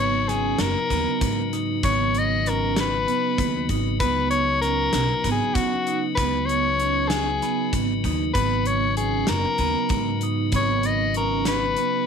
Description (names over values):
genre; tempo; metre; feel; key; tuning
progressive instrumental, band music in an uneven meter; 193 BPM (eighths); 7/8; straight; G# minor; A4 = 441 Hz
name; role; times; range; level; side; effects
clear soprano saxophone; melody; 0.0-12.1 s; F#4 to D#5; -24 LUFS; left 3 dB; none
tonewheel organ; accompaniment; 0.0-12.1 s; C#3 to D#4; -28 LUFS; left 12 dB; stopped rotary speaker
vibraphone with medium hard mallets; arpeggios; 0.0-12.1 s; B3 to D#4; -28 LUFS; right 14 dB; tape echo
upright bass; bass; 0.0-11.7 s; F#1 to C#3; -27 LUFS; right 1 dB; none
gated 80s drum kit; drums; 0.3-11.9 s; hi-hat, kick drum, snare drum; -28 LUFS; equal; none
room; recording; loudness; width
light reverb; 1960s-style stereo with parts hard left and right; -20 LUFS; side -6 dB against mid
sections
0.0-12.1 A section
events
none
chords
0.0 G#madd9; 4.0 C#5; 8.4 G#madd9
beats
0.29 0.60 0.91 1.22 1.53 | 1.84 2.15 2.46 2.77 3.08 3.40 3.71 | 4.01 4.33 4.64 4.95 5.26 5.57 5.88 | 6.19 6.50 6.81 7.12 7.43 7.74 8.05 | 8.36 8.67 8.98 9.29 9.60 9.91 10.22 | 10.53 10.84 11.15 11.46 11.78